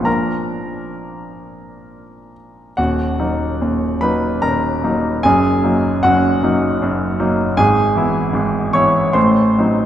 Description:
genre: classical, romantic character piece for solo piano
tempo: 65-79 BPM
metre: 3/4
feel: rubato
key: unclear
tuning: A4 = 440 Hz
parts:
  - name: bright concert grand piano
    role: solo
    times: 0.0-9.9 s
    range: Eb1 to Db6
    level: -14 LUFS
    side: equal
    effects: none
room: wet church reverb, RT60 3.2 s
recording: recorded in a church or concert hall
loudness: -14 LUFS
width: side -11 dB against mid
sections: 0.0-2.8 A section; 2.8-9.9 A section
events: none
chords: 0.1 Bb; 2.8 Ebm; 5.2 Ebm/Gb; 7.6 E/G#; 9.2 Adim7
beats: | 0.06 0.97 1.89 | 2.78 3.62 4.43 | 5.24 6.04 6.82 | 7.59 8.36 9.16

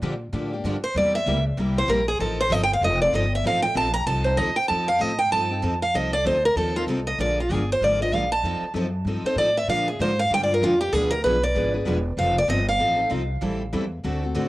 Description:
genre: acoustic string swing (jazz manouche)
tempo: 193 BPM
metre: 4/4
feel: swing 60% on 8ths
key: F mixolydian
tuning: A4 = 441 Hz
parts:
  - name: picked steel-string acoustic guitar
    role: accompaniment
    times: 0.0-14.5 s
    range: B2 to B4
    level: -30 LUFS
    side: left 4 dB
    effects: cassette tape
  - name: picked steel-string acoustic guitar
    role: accompaniment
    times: 0.0-14.5 s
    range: B2 to B4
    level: -30 LUFS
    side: right 2 dB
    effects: cassette tape
  - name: upright bass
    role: bass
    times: 0.0-14.5 s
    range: E1 to Bb2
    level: -27 LUFS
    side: equal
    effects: none
  - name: picked steel-string acoustic guitar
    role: melody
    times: 0.8-13.1 s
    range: F4 to Bb5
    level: -22 LUFS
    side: right 1 dB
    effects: cassette tape, analog delay
room: light reverb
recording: home recording on cassette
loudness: -20 LUFS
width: side -17 dB against mid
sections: 0.0-4.7 A section; 4.7-14.5 A section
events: steel-string acoustic guitar solo 0.0-14.5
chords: 0.0 Gm7; 1.0 C7; 2.2 F7; 7.2 Bb7; 8.4 F7; 9.7 Bb7; 10.9 Bdim7; 12.2 F7; 13.4 Am7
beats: 0.02 0.33 0.64 | 0.95 1.26 1.58 1.89 | 2.20 2.51 2.82 3.13 | 3.45 3.76 4.07 4.38 | 4.69 5.00 5.32 5.63 | 5.94 6.25 6.56 6.88 | 7.19 7.50 7.81 8.12 | 8.43 8.74 9.06 9.37 | 9.68 9.99 10.30 10.61 | 10.93 11.24 11.55 11.86 | 12.17 12.48 12.79 13.11 | 13.42 13.73 14.04 14.35

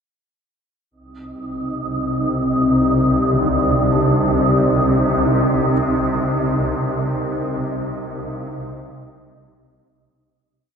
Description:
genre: dark ambient drone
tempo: 50 BPM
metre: 4/4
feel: straight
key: C minor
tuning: A4 = 440 Hz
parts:
  - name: dark analog pad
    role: sustained chords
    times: 1.3-10.5 s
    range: C4 to F5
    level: -23 LUFS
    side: left 1 dB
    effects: chorus
  - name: swarming drone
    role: drone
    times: 1.6-10.6 s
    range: C2 to C3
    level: -20 LUFS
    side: equal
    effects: built-in reverb
  - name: wind-like tuned noise texture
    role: texture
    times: 1.4-10.5 s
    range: Eb4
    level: -23 LUFS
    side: right 1 dB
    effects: built-in reverb
  - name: warm grand piano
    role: arpeggios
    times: 2.7-10.8 s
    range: D2 to Eb4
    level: -30 LUFS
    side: right 2 dB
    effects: none
room: wet cathedral reverb, RT60 5.5 s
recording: in a vast, echoing space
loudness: -16 LUFS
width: side -6 dB against mid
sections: 0.9-10.5 A section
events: fade-out on analog synth pad 0.9-10.5; fade-out 5.7-10.5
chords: 0.9 Cm; 5.7 Eb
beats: | 0.92 2.12 3.32 4.52 | 5.72 6.92 8.12 9.32

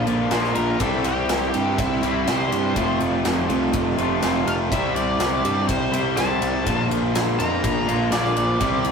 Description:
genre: quiet-loud alternative rock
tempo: 123 BPM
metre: 4/4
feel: straight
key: unclear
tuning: A4 = 440 Hz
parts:
  - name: octave-fuzz lead guitar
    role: melody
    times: 0.0-8.9 s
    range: E4 to Bb5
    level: -26 LUFS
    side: left 2 dB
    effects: distortion
  - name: electric guitar at the edge of break-up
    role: arpeggios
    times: 0.0-4.7 s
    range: F2 to F4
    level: -30 LUFS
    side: right 4 dB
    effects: none
  - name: distorted electric guitar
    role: riff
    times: 0.0-8.9 s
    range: Bb2 to F4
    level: -25 LUFS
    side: left 4 dB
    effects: distortion
  - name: distorted electric guitar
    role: riff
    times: 0.0-8.9 s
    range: F2 to C4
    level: -25 LUFS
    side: right 4 dB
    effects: distortion
  - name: fuzz picked electric bass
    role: bass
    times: 0.0-8.9 s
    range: F1 to G2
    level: -27 LUFS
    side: equal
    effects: overdrive
  - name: big rock drum kit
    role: drums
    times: 0.1-8.9 s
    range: kick drum, ride cymbal, snare drum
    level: -26 LUFS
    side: left 1 dB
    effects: none
room: moderate small room ambience, RT60 0.5 s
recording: rough rehearsal-room recording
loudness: -19 LUFS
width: side -6 dB against mid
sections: 0.0-8.9 A section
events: lead electric guitar solo 0.0-8.9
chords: 0.0 Bb; 0.8 C; 2.8 F; 4.7 C; 6.7 Bb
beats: 0.32 | 0.81 1.30 1.79 2.28 | 2.77 3.25 3.74 4.23 | 4.72 5.21 5.70 6.18 | 6.67 7.15 7.64 8.12 | 8.61

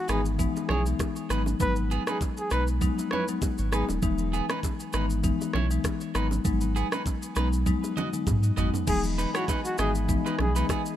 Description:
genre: afrobeats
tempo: 99 BPM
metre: 4/4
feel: swing 55% on 16ths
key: E major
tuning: A4 = 440 Hz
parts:
  - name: breathy trumpet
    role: melody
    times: 0.0-3.9, 8.9-10.5 s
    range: F#4 to B4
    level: -32 LUFS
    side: equal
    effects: tape echo
  - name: marimba with medium mallets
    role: accompaniment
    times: 0.0-10.8 s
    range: E3 to D#4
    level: -30 LUFS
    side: left 6 dB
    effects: none
  - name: electric guitar at the edge of break-up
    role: riff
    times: 0.1-10.8 s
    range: B3 to D#5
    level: -35 LUFS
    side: right 5 dB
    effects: tape echo
  - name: warm sub bass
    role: bass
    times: 0.1-10.6 s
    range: D#1 to G#2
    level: -27 LUFS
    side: right 1 dB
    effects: none
  - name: afro-pop drum kit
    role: drums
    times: 0.1-11.0 s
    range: crash cymbal, kick drum, rim click, shaker, toms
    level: -30 LUFS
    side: right 1 dB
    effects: none
  - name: congas and bongos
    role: percussion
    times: 0.4-10.8 s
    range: none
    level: -37 LUFS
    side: right 6 dB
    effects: none
  - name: glass harmonica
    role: sustained chords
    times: 8.9-11.0 s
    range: G#4 to B5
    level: -38 LUFS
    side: right 2 dB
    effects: none
room: little or no reverb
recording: none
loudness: -24 LUFS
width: side -11 dB against mid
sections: 0.0-8.9 A section; 8.9-11.0 B section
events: drum fill 7.7-8.9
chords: 0.0 Emaj7; 1.3 G#m7; 4.0 Emaj7; 6.1 G#m7; 8.9 Emaj7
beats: 0.39 1.00 | 1.60 2.21 2.81 3.42 | 4.03 4.63 5.24 5.84 | 6.45 7.06 7.66 8.27 | 8.88 9.48 10.09 10.69

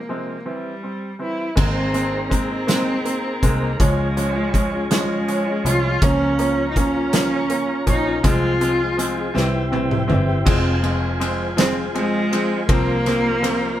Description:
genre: six-eight pop ballad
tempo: 54 BPM (dotted quarters)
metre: 6/8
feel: straight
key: F minor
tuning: A4 = 440 Hz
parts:
  - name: warm cello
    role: melody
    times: 0.0-13.8 s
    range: G3 to F4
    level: -23 LUFS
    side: right 1 dB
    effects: none
  - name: bright upright piano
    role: accompaniment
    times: 0.1-13.7 s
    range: C3 to Db4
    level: -24 LUFS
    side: equal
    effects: none
  - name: tonewheel organ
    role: sustained chords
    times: 1.6-13.8 s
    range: E4 to Bb5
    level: -28 LUFS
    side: equal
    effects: chorus vibrato, stopped rotary speaker
  - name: picked steel-string acoustic guitar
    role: arpeggios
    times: 1.6-13.8 s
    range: F2 to Bb4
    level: -29 LUFS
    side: left 4 dB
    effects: none
  - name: vintage muted fingered electric bass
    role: bass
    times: 1.6-13.8 s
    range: F1 to Db2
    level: -24 LUFS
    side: equal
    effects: none
  - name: loose indie drum kit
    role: drums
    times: 1.6-13.6 s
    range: crash cymbal, hi-hat, kick drum, ride cymbal, snare drum, toms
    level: -22 LUFS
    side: equal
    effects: none
room: moderate stone room reverb, RT60 1.0 s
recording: band playing live in one room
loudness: -17 LUFS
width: side -12 dB against mid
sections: 0.0-1.6 A section; 1.6-10.5 B section; 10.5-13.8 C section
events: drum fill 9.4-10.5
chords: 0.5 C; 1.6 Abadd9; 3.8 Db; 6.0 Bbm/Db; 8.2 Fm/C; 9.4 C; 10.5 Fm; 12.7 C7sus4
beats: 0.46 | 1.57 2.69 | 3.80 4.91 | 6.02 7.14 | 8.25 9.36 | 10.47 11.58 | 12.69

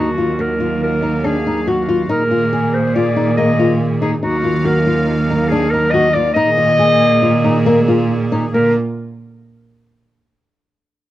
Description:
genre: contemporary instrumental, chamber music in an uneven meter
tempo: 140 BPM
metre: 5/4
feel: straight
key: Bb mixolydian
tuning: A4 = 439 Hz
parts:
  - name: clear clarinet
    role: melody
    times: 0.0-8.7 s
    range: Gb4 to Eb5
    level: -17 LUFS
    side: left 2 dB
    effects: none
  - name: brassy analog pad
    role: sustained chords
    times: 0.0-8.7 s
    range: D3 to F5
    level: -22 LUFS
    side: equal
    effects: chorus, phaser
  - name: flamenco guitar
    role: arpeggios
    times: 0.0-8.7 s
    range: Bb3 to Ab4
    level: -19 LUFS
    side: left 3 dB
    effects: none
  - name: clear cello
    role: bass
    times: 0.0-8.7 s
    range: Eb2 to Bb2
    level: -18 LUFS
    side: right 3 dB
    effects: none
room: moderate spring reverb, RT60 1.3 s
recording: worn, warbling old tape, cassette tape, warbly pitch drift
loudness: -13 LUFS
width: side -14 dB against mid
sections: 0.0-8.5 A section; 8.5-10.7 B section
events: none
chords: 0.0 Ebmadd9; 2.1 Bb7sus4; 4.2 Ebmadd9; 6.4 Bb7sus4; 8.5 Bb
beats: 0.39 0.82 1.25 1.67 | 2.10 2.52 2.95 3.37 3.80 | 4.23 4.65 5.08 5.51 5.93 | 6.36 6.79 7.22 7.66 8.10 | 8.53

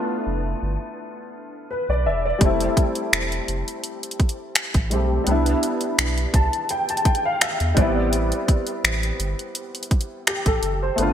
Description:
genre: contemporary R&B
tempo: 84 BPM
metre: 4/4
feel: swing 54% on 16ths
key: unclear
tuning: A4 = 440 Hz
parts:
  - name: warm grand piano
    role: accompaniment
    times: 0.0-11.1 s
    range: G3 to A5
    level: -24 LUFS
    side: left 1 dB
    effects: ensemble chorus
  - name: warm sub bass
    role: bass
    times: 0.3-11.1 s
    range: E1 to E2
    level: -24 LUFS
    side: equal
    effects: none
  - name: trap drum kit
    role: drums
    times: 2.4-11.1 s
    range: finger snaps, hi-hat, kick drum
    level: -21 LUFS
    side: equal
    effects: overdrive
  - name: swell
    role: sound effects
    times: 11.0-11.1 s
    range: none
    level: barely audible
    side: none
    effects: none
room: moderate lush hall reverb, RT60 1.8 s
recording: bright 1980s-style digital production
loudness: -20 LUFS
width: side -9 dB against mid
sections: 0.0-11.1 A section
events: grand piano fill 6.0-8.1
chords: 0.0 G7 (rootless); 2.4 Fmaj9; 5.3 Cmaj7; 7.8 Am7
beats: 0.27 0.98 1.70 | 2.41 3.12 3.84 4.55 | 5.27 5.98 6.70 7.41 | 8.12 8.84 9.55 10.27 | 10.98

